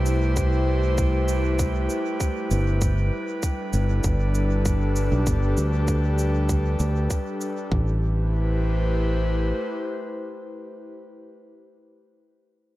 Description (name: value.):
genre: ambient dub.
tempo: 98 BPM.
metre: 4/4.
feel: straight.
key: A minor.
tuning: A4 = 437 Hz.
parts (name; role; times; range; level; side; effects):
airy breathy pad; sustained chords; 0.0-10.9 s; G3 to C5; -27 LUFS; equal; chorus.
fingered electric bass; bass; 0.0-9.5 s; G1 to D2; -22 LUFS; equal; none.
drifting glass-harmonics texture; texture; 0.0-7.7 s; G3 to G5; -37 LUFS; right 1 dB; chorus, built-in reverb.
cabasa; drums; 0.1-7.5 s; none; -37 LUFS; right 2 dB; dub echo.
electronic kick drum; drums; 0.4-7.8 s; none; -25 LUFS; equal; none.
room: light reverb.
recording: echo-heavy mix.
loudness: -21 LUFS.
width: side -16 dB against mid.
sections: 0.0-7.7 A section; 7.7-10.2 B section.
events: none.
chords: 0.0 Am7; 2.8 G; 7.7 Am7.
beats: | 0.37 0.98 1.59 2.21 | 2.82 3.43 4.04 4.65 | 5.27 5.88 6.49 7.10 | 7.71 8.33 8.94 9.55.